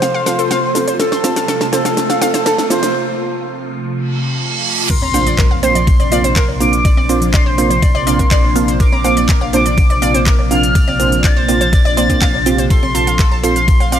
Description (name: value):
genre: progressive house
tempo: 123 BPM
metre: 4/4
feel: straight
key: Bb major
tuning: A4 = 444 Hz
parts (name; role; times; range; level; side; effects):
- expressive synth lead; melody; 0.0-14.0 s; A4 to A6; -18 LUFS; equal; lush chorus, sidechain pumping, dub echo
- evolving wavetable pad; sustained chords; 0.0-14.0 s; C3 to F4; -22 LUFS; equal; ensemble chorus, built-in reverb, phaser, sidechain pumping
- analog pluck; arpeggios; 0.0-14.0 s; A4 to C6; -22 LUFS; left 1 dB; chorus, sidechain pumping, dub echo
- pop drum kit; drums; 0.0-14.0 s; cabasa, crash cymbal, handclaps, hi-hat, ride cymbal, snare drum; -22 LUFS; equal; studio reverb, sidechain pumping on hats, sidechain pumping on perc, sidechain pumping on cymbals
- riser, reverse cymbal and impact; sound effects; 0.3-6.8 s; none; -24 LUFS; right 2 dB; none
- wide unison pluck; stabs; 0.3-14.0 s; Bb3 to F5; -20 LUFS; right 5 dB; sidechain pumping, dub echo
- round analog bass; bass; 4.9-14.0 s; Bb1; -19 LUFS; left 1 dB; sidechain pumping
- electronic kick drum; drums; 4.9-13.8 s; none; -13 LUFS; equal; studio reverb
- bongos and congas; percussion; 5.0-13.9 s; none; -26 LUFS; right 3 dB; sidechain pumping on perc, studio reverb
room: light reverb, digital ambience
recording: none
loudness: -11 LUFS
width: side -10 dB against mid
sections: 0.0-4.9 A section; 4.9-14.0 B section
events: build-up 0.0-4.9; drum fill 0.0-2.9; break 2.9-4.9; reverse cymbal 4.1-4.9; drop 4.9-14.0; impact 4.9-6.8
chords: 0.0 F; 4.9 Bbadd9; 12.7 F/Bb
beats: 0.02 0.51 | 1.00 1.48 1.97 2.46 | 2.95 3.44 3.92 4.41 | 4.90 5.39 5.87 6.36 | 6.85 7.34 7.83 8.31 | 8.80 9.29 9.78 10.26 | 10.75 11.24 11.73 12.21 | 12.70 13.19 13.68